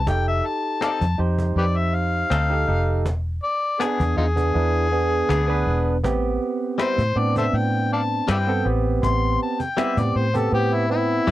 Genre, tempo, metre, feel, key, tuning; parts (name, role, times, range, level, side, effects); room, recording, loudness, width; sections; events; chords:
straight-eighth soul blues; 80 BPM; 4/4; straight; A minor; A4 = 440 Hz
overdriven harmonica; melody; 0.0-11.3 s; D#4 to C6; -24 LUFS; left 3 dB
vintage muted fingered electric bass; bass; 0.0-11.3 s; E1 to A2; -22 LUFS; equal
barky tine electric piano; accompaniment; 0.1-11.3 s; B3 to C5; -25 LUFS; right 4 dB; overdrive, wide subtle chorus
cajon; drums; 0.1-11.3 s; -31 LUFS; equal
direct-recorded clean electric guitar; stabs; 0.8-11.3 s; G3 to B4; -27 LUFS; left 6 dB; harmonic tremolo
little or no reverb; dry, close 1970s-style studio recording; -19 LUFS; side -15 dB against mid
0.0-11.3 A section
harmonica solo 0.0-11.3
0.1 F7; 3.1 E7; 6.0 Am9